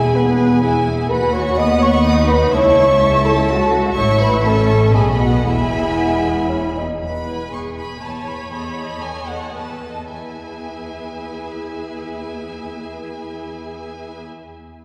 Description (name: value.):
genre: quick classical-period movement for symphony orchestra.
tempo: 103-128 BPM.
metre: 3/4.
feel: rubato.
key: E major.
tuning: A4 = 435 Hz.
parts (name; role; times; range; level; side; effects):
clear chamber violin section; melody; 0.0-14.2 s; B4 to D#6; -31 LUFS; equal; none.
clear studio violin section; second line; 0.0-14.2 s; A4 to C#6; -30 LUFS; equal; none.
flute section; second line; 0.0-6.7 s; B4 to D#6; -27 LUFS; equal; none.
rich chamber viola section; accompaniment; 0.0-14.2 s; G#3 to C#5; -28 LUFS; equal; none.
mellow French horn section; sustained chords; 0.0-6.7 s; B3 to D#5; -20 LUFS; equal; none.
rich chamber cello section; bass; 0.0-14.2 s; C#2 to B2; -25 LUFS; equal; none.
rich studio double bass section; bass; 0.0-6.8 s; E1 to D#2; -25 LUFS; equal; none.
mellow bassoon; accompaniment; 6.0-7.0 s; B3 to D#4; -30 LUFS; equal; none.
room: wet church reverb, RT60 2.7 s.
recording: recorded in a church or concert hall.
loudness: -16 LUFS.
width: mono.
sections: 0.0-7.0 A section; 7.0-10.1 B section; 10.1-13.5 C section.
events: slowing down 6.2-10.1.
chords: 0.0 E; 1.1 B/D#; 2.5 A/C#; 4.0 A; 4.9 B; 5.5 E; 8.5 B7/E; 10.1 E.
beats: 0.16 0.63 | 1.10 1.57 2.05 | 2.52 3.00 3.49 | 3.97 4.45 4.95 | 5.46 5.99 6.51 | 7.02 7.52 8.02 | 8.51 9.02 9.56 | 10.13 10.69 11.25 | 11.81 12.36 12.92.